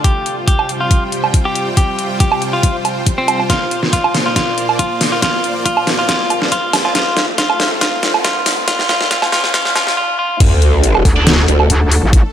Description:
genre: heavy wobble dubstep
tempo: 139 BPM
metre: 4/4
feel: half-time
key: D minor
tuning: A4 = 440 Hz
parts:
  - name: clean electric guitar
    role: melody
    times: 0.0-10.4 s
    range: C4 to G4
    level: -18 LUFS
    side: left 1 dB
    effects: tape echo
  - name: supersaw pad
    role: sustained chords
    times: 0.0-12.3 s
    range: Bb2 to G5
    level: -23 LUFS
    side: equal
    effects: sidechain pumping
  - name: dubstep drum kit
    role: drums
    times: 0.0-12.2 s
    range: crash cymbal, hi-hat, snare drum, woodblock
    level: -16 LUFS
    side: right 1 dB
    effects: none
  - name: electronic kick drum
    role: drums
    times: 0.0-12.2 s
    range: none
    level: -14 LUFS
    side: equal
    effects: none
  - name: riser and sub drop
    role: sound effects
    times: 5.4-12.1 s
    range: none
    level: -23 LUFS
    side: equal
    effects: none
  - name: growl bass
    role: bass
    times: 10.4-11.7 s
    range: D2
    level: -12 LUFS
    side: equal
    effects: chorus, overdrive
  - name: metallic wobble bass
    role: bass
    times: 11.1-12.2 s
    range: A1 to D2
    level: -13 LUFS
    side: equal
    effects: distortion, chorus, overdrive
  - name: high-gain distorted guitar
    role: stabs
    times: 11.2-11.3 s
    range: D4 to D5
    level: -22 LUFS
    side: right 2 dB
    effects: none
room: light reverb, digital ambience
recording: high-pass filter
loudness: -12 LUFS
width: side -10 dB against mid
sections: 0.0-10.4 A section; 10.4-12.3 B section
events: build-up 0.0-10.4; filter sweep 0.0-10.4; drum fill 3.5-10.0; break 10.0-10.4; drop 10.4-12.3; impact 10.4-12.1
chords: 0.0 Csus4; 3.5 Bbadd9; 7.0 F; 10.4 D5

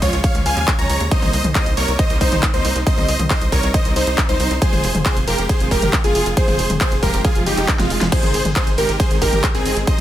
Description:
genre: uplifting trance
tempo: 137 BPM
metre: 4/4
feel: straight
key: Ab major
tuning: A4 = 440 Hz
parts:
  - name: supersaw chords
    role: melody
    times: 0.0-10.0 s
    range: Ab3 to Bb5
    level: -22 LUFS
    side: equal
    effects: sidechain pumping, digital delay
  - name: plucky unison lead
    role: second line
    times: 0.0-10.0 s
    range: F4 to Bb5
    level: -25 LUFS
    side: equal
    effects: sidechain pumping, dub echo
  - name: rich symphonic string section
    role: sustained chords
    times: 0.0-10.0 s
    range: C3 to F4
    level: -26 LUFS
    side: right 1 dB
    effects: sidechain pumping
  - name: tight sequencer bass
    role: bass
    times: 0.0-10.0 s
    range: F1 to Eb2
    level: -22 LUFS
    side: equal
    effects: sidechain pumping
  - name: big-room dance drum kit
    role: drums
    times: 0.0-10.0 s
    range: crash cymbal, handclaps, hi-hat, snare drum, toms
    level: -23 LUFS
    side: left 1 dB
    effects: overdrive, sidechain pumping on hats, small room reverb, sidechain pumping on toms, sidechain pumping on cymbals
  - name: electronic kick drum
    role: drums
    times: 0.0-10.0 s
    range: none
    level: -18 LUFS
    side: equal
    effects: overdrive, small room reverb
room: little or no reverb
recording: none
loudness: -15 LUFS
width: side -12 dB against mid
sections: 0.0-8.1 A section; 8.1-10.0 A section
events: drop 0.0-8.1, 8.1-10.0; drum fill 7.8-8.1; band accent 8.0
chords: 0.0 Dbadd9; 1.1 Cm7; 4.6 Fm; 8.1 Ab

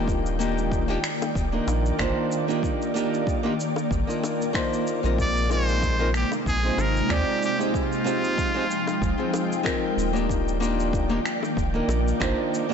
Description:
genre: sunset chillout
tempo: 94 BPM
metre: 4/4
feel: swing 55% on 16ths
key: Eb major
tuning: A4 = 440 Hz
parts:
  - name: flamenco guitar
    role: accompaniment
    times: 0.0-12.7 s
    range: Ab3 to D5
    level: -27 LUFS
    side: moving between left 6 dB and right 6 dB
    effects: auto-pan, ping-pong delay, shimmer reverb
  - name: ethereal airy pad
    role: sustained chords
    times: 0.0-12.7 s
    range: C3 to G5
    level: -28 LUFS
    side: left 1 dB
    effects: ensemble chorus, built-in reverb, shimmer reverb
  - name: warm sub bass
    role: bass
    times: 0.0-12.3 s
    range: Eb1 to Eb2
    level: -26 LUFS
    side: equal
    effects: none
  - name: electronic kick drum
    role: drums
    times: 0.1-12.3 s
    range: none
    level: -29 LUFS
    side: equal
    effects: overdrive, small room ambience
  - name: electronic shaker and finger snaps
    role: drums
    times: 0.1-12.7 s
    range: none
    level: -34 LUFS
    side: equal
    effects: small room ambience, soft clipping on snare
  - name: bongos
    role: percussion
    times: 1.2-12.0 s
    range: none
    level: -34 LUFS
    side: left 5 dB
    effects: none
  - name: trumpet with straight mute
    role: melody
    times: 5.2-9.6 s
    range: F4 to D5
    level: -31 LUFS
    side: equal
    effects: ping-pong delay, shimmer reverb
room: moderate plate reverb, RT60 2.2 s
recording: blown-out, overdriven recording, overdrive, nothing above 7.9 kHz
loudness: -22 LUFS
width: side -7 dB against mid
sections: 0.0-12.7 A section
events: none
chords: 0.0 Ebmaj7; 5.2 Bb9sus4; 7.7 Ebmaj7

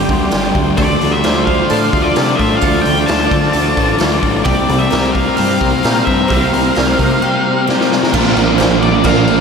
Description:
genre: rock, shoegaze and dream pop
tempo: 131 BPM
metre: 4/4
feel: straight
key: D minor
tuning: A4 = 440 Hz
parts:
  - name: airy breathy pad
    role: sustained chords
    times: 0.0-9.4 s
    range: F4 to D6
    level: -20 LUFS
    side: equal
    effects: chorus
  - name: picked twelve-string acoustic guitar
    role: arpeggios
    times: 0.0-9.4 s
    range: F4 to C5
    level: -22 LUFS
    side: right 2 dB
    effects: wide subtle chorus, analog delay
  - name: crunchy overdriven guitar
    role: riff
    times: 0.0-9.4 s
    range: G2 to F4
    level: -20 LUFS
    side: right 9 dB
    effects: reverse reverb
  - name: thick fuzz guitar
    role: riff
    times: 0.0-9.4 s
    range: G2 to D4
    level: -18 LUFS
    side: left 8 dB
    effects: distortion, analog chorus
  - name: growling picked electric bass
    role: bass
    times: 0.0-9.4 s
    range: G1 to D3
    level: -19 LUFS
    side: equal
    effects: overdrive
  - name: raw garage drum kit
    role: drums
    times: 0.1-9.4 s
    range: crash cymbal, hi-hat, kick drum, snare drum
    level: -18 LUFS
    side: equal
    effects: none
  - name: octave-fuzz lead guitar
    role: melody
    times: 0.8-9.4 s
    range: D5 to A5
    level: -19 LUFS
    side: left 1 dB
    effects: distortion, analog delay
  - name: biting overdriven guitar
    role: riff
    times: 8.1-9.4 s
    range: Bb2 to D4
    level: -20 LUFS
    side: equal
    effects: none
room: wet huge ambient reverb, RT60 9.0 s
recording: dreamy mix soaked in reverb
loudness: -11 LUFS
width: side -6 dB against mid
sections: 0.0-8.1 A section; 8.1-9.4 B section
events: drum fill 7.7-8.1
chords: 0.0 Gsus4; 0.8 Dm7; 4.5 C7sus4; 8.1 Bb

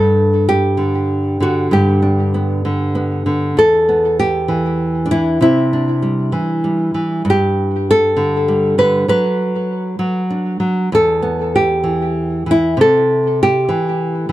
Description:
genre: folk, solo fingerstyle acoustic guitar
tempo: 65 BPM (dotted quarters)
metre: 6/8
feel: straight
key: G major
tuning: A4 = 440 Hz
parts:
  - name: nylon-string guitar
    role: solo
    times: 0.0-14.3 s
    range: E2 to B4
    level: -13 LUFS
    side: equal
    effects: tape echo
room: little or no reverb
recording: dry, close 1970s-style studio recording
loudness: -13 LUFS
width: side -15 dB against mid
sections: 0.0-3.6 A section; 3.6-14.3 A section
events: none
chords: 0.0 Gsus2; 1.7 G; 3.6 Em; 5.4 Cadd9; 7.3 Gsus2; 9.1 D/F#; 10.9 Em; 12.8 C

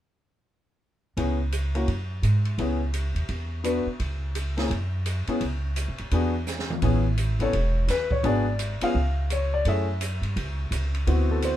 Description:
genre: jazz piano trio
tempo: 170 BPM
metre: 4/4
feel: swing 63% on 8ths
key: A major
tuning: A4 = 439 Hz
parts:
  - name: warm grand piano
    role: melody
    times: 1.2-11.6 s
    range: A3 to F5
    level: -26 LUFS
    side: left 2 dB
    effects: none
  - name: upright bass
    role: bass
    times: 1.2-11.6 s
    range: E1 to G#2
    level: -25 LUFS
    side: equal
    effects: none
  - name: open jazz drum kit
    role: drums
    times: 1.2-11.5 s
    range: hi-hat, kick drum, ride cymbal, snare drum, toms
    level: -33 LUFS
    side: right 1 dB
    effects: none
room: light reverb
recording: band playing live in one room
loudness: -23 LUFS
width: side -12 dB against mid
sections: 1.2-6.8 A section; 6.8-11.6 B section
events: drum fill 6.5-6.8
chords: 1.2 C#m7; 1.9 F#sus2; 2.6 C#m7; 3.3 E5; 4.0 N.C.; 4.7 F#5; 5.4 C#m; 6.1 E7; 6.8 A; 8.2 G#m7b5; 8.9 C#; 9.7 F#7(no3)

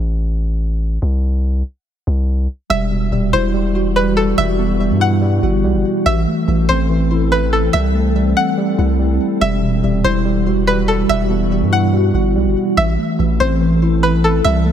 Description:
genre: hip hop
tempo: 143 BPM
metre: 4/4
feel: half-time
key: E minor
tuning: A4 = 442 Hz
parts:
  - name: long sustained 808-style bass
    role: bass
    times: 0.0-14.7 s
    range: D#1 to G2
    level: -17 LUFS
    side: equal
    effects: none
  - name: string-like resonator pluck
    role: melody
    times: 2.7-14.7 s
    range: A4 to F#5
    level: -20 LUFS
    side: equal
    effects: chorus
  - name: mellow tine electric piano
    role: accompaniment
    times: 2.7-14.7 s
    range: B2 to F#4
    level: -18 LUFS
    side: right 1 dB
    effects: medium stereo tremolo
  - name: glassy FM pad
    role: sustained chords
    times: 3.2-14.7 s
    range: E3 to A4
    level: -22 LUFS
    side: left 1 dB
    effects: ensemble chorus, built-in reverb, phaser
room: light reverb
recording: none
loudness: -14 LUFS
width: side -9 dB against mid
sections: 0.0-2.7 A section; 2.7-14.7 B section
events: break 0.0-2.7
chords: 0.0 N.C.; 2.7 Emadd9; 6.1 Am; 7.7 C6; 9.4 Emadd9; 12.8 Am

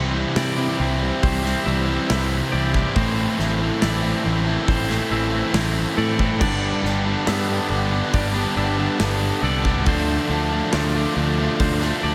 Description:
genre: post-rock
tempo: 69 BPM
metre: 4/4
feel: straight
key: A minor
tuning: A4 = 442 Hz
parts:
  - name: rich studio string section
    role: sustained chords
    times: 0.0-12.1 s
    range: E4 to A5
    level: -37 LUFS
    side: equal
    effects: none
  - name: twangy electric guitar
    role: arpeggios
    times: 0.0-12.1 s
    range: A2 to A4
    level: -34 LUFS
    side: equal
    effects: none
  - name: twangy electric guitar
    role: arpeggios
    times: 0.0-12.1 s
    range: C5 to E5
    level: -34 LUFS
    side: equal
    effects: spring reverb, slapback echo
  - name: cranked stack guitar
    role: riff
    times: 0.0-12.1 s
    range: G2 to E4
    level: -27 LUFS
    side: equal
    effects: overdrive
  - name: thick fuzz guitar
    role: riff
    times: 0.0-12.1 s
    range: G2 to E4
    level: -28 LUFS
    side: equal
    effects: distortion
  - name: picked electric bass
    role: bass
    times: 0.0-12.1 s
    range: G1 to C3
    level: -26 LUFS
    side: equal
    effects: none
  - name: big rock drum kit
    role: drums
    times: 0.4-11.9 s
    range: crash cymbal, hi-hat, kick drum, snare drum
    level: -29 LUFS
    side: equal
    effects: none
room: light reverb, studio reverb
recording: none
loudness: -21 LUFS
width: mono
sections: 0.0-12.1 A section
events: none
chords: 0.0 C; 3.0 Am; 6.4 Gadd9; 9.9 Dm

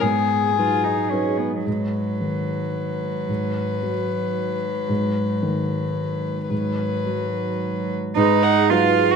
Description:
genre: neoclassical piano and strings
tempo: 111 BPM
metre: 3/4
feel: rubato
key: G# dorian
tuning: A4 = 440 Hz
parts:
  - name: warm violin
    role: melody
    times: 0.0-9.2 s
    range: G#4 to F#5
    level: -25 LUFS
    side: left 10 dB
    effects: none
  - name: warm cello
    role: second line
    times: 0.0-9.2 s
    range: F#3 to F#4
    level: -24 LUFS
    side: right 12 dB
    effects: none
  - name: felt-muted upright piano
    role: accompaniment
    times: 0.0-9.2 s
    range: G#2 to B4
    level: -24 LUFS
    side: equal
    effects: none
  - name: marimba with soft mallets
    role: arpeggios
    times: 0.0-1.6, 8.2-9.2 s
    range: G#4 to F#5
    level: -29 LUFS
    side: right 3 dB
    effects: tape echo
room: moderate spring reverb, RT60 1.7 s, small room ambience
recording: 1960s-style stereo with parts hard left and right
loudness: -20 LUFS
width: side -6 dB against mid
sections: 0.0-1.7 A section; 1.7-8.2 B section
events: none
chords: 0.0 G#m7

